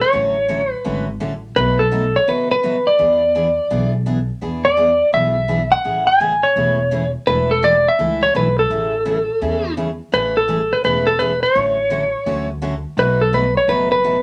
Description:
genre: country, western swing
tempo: 168 BPM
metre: 4/4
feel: swing 64% on 8ths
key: A major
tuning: A4 = 442 Hz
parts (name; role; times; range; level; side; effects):
- clean lap steel guitar; melody; 0.0-14.2 s; A4 to G#5; -18 LUFS; equal; none
- picked steel-string acoustic guitar; accompaniment; 0.1-14.2 s; B2 to A4; -27 LUFS; equal; none
- upright bass; bass; 0.1-14.2 s; E1 to E2; -27 LUFS; equal; none
room: wet small room reverb, RT60 0.5 s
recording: none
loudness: -17 LUFS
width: mono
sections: 0.0-10.1 A section; 10.1-14.2 A section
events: none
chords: 0.1 Dmaj7/A; 1.6 B7; 3.0 E7; 5.8 Amaj7; 7.3 E7sus4; 8.7 Amaj7; 11.6 Dmaj7/A; 13.0 B7

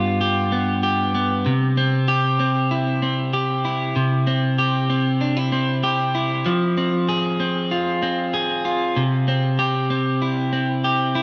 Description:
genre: dream pop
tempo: 96 BPM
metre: 4/4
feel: straight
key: C major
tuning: A4 = 442 Hz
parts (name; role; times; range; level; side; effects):
- electric guitar at the edge of break-up; solo; 0.0-11.2 s; G2 to Ab4; -21 LUFS; equal; subtle chorus, low-pass filter, tape echo
room: moderate lush hall reverb, RT60 2.7 s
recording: rough home demo mix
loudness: -21 LUFS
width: mono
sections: 0.0-1.5 A section; 1.5-11.2 B section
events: filter sweep on clean electric guitar 0.0-1.5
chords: 0.0 G7; 1.5 C; 6.5 Fm; 9.0 C

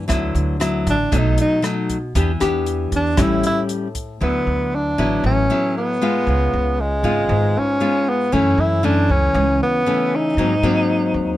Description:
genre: bossa nova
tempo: 117 BPM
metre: 4/4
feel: straight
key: D major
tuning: A4 = 439 Hz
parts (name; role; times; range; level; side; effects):
- nylon-string guitar; accompaniment; 0.0-11.4 s; F#2 to G4; -21 LUFS; left 2 dB; none
- upright bass; bass; 0.1-11.4 s; G#1 to G#2; -21 LUFS; right 1 dB; none
- compact cocktail drum kit; drums; 0.1-4.1 s; hi-hat, kick drum, rim click; -24 LUFS; equal; none
- mellow tenor saxophone; melody; 0.9-11.4 s; G#3 to E4; -19 LUFS; equal; none
room: light reverb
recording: close, detailed microphones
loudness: -16 LUFS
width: side -14 dB against mid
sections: 0.0-4.2 A section; 4.2-11.4 B section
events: tenor saxophone solo 0.0-4.2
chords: 0.1 D69; 1.1 B7; 2.1 Em7; 3.2 A7; 4.2 D69; 6.3 C#7; 8.3 F#m7; 10.4 G#9

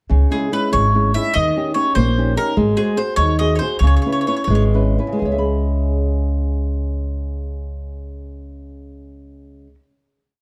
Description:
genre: italian folk, Italian serenade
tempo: 77-99 BPM (dotted quarters)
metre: 6/8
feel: rubato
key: C# minor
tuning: A4 = 442 Hz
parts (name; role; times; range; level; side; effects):
- nylon-string guitar; accompaniment; 0.1-9.8 s; C#3 to B5; -24 LUFS; equal; none
- upright bass; bass; 0.1-9.7 s; G#1 to D#2; -21 LUFS; equal; none
- mandolin; melody; 0.3-4.6 s; G#4 to E5; -22 LUFS; equal; none
room: light reverb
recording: dark, warm production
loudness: -18 LUFS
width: mono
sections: 0.1-5.2 A section; 5.2-8.3 final chord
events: slowing down 2.6-5.2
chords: 0.1 C#m; 1.3 D#7; 2.6 G#7; 3.8 C#m7

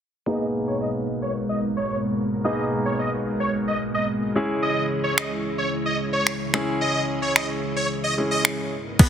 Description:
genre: dance-pop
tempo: 110 BPM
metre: 4/4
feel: straight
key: G# minor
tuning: A4 = 440 Hz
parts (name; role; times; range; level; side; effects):
- supersaw chords; melody; 0.3-8.4 s; C#5 to D#5; -27 LUFS; equal; low-pass filter, tape echo
- clear grand piano; accompaniment; 0.3-9.1 s; G#3 to G#4; -27 LUFS; equal; sidechain pumping, low-pass filter
- string machine, cellos; sustained chords; 0.4-9.0 s; G#2 to C#5; -27 LUFS; equal; ensemble chorus, sidechain pumping, low-pass filter
- deep house drum kit; drums; 5.2-9.1 s; crash cymbal, finger snaps, kick drum; -17 LUFS; equal; soft clipping on snare
- wide unison pluck; arpeggios; 9.0-9.1 s; B3; -22 LUFS; right 3 dB; phaser, sidechain pumping
room: moderate plate reverb, RT60 2.1 s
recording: dense, heavily limited modern master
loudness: -22 LUFS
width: side -9 dB against mid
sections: 0.3-9.0 A section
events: filter sweep 0.3-9.0; kick muted 6.8-9.0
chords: 0.3 G#madd9; 4.4 C#m; 8.7 G#madd9

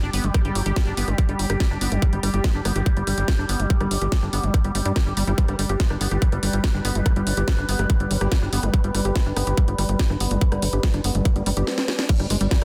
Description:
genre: psychedelic trance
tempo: 143 BPM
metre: 4/4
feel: straight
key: G major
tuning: A4 = 440 Hz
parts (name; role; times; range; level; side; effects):
- overtone-sweeping drone; sustained chords; 0.0-12.6 s; G3 to B4; -33 LUFS; equal; chorus, built-in reverb, sidechain pumping
- liquid acid bass; riff; 0.0-12.6 s; F#3 to G4; -31 LUFS; equal; chorus, sidechain pumping, digital delay
- tight sequencer bass; bass; 0.0-12.6 s; G1 to G2; -26 LUFS; equal; none
- drum and bass drum kit; drums; 0.1-12.6 s; crash cymbal, hi-hat, rim click, snare drum; -31 LUFS; equal; soft clipping on snare
- formant-sweep wobble bass; second line; 0.3-0.9, 5.4-8.6 s; G3 to B3; -41 LUFS; equal; none
- electronic kick drum; drums; 0.3-12.6 s; none; -22 LUFS; equal; none
- riser; sound effects; 11.0-12.1 s; none; -39 LUFS; equal; none
- warbly tape-like pad; texture; 12.4-12.6 s; G4 to D5; -40 LUFS; equal; none
room: light reverb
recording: dense, heavily limited modern master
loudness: -22 LUFS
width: mono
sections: 0.0-12.1 A section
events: drum fill 11.7-12.1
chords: 0.0 G5

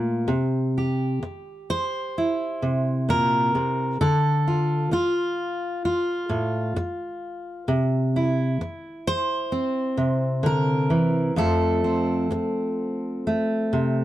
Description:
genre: folk, solo fingerstyle acoustic guitar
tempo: 65 BPM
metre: 4/4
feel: rubato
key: unclear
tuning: A4 = 441 Hz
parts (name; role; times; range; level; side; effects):
- fingerpicked steel-string acoustic guitar; solo; 0.0-14.0 s; F2 to C5; -22 LUFS; equal; none
room: light reverb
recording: dark, warm production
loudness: -21 LUFS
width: side -14 dB against mid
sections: 0.3-14.0 A section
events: none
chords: 0.3 C; 4.0 Dm; 7.7 C; 11.4 F

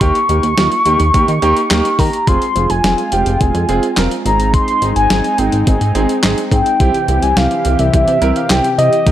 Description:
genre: synth-pop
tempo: 106 BPM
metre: 4/4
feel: straight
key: unclear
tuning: A4 = 440 Hz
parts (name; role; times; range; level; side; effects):
- mellow horn-like synth lead; melody; 0.0-9.1 s; Eb5 to Db6; -16 LUFS; equal; chorus
- dark grand piano; accompaniment; 0.0-9.1 s; Bb3 to Bb4; -19 LUFS; right 3 dB; none
- chorused synth bass; bass; 0.0-9.1 s; F1 to Eb3; -17 LUFS; equal; none
- clean 12-bit digital drum machine; drums; 0.0-9.1 s; handclaps, hi-hat, kick drum, snare drum; -17 LUFS; equal; overdrive
- warm analog pad; sustained chords; 2.3-9.1 s; C3 to Bb4; -22 LUFS; left 2 dB; chorus
room: light reverb, digital ambience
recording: none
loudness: -11 LUFS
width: side -12 dB against mid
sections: 0.0-9.1 A section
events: none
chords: 0.0 Eb; 2.3 Fm; 4.3 Ab; 6.8 C

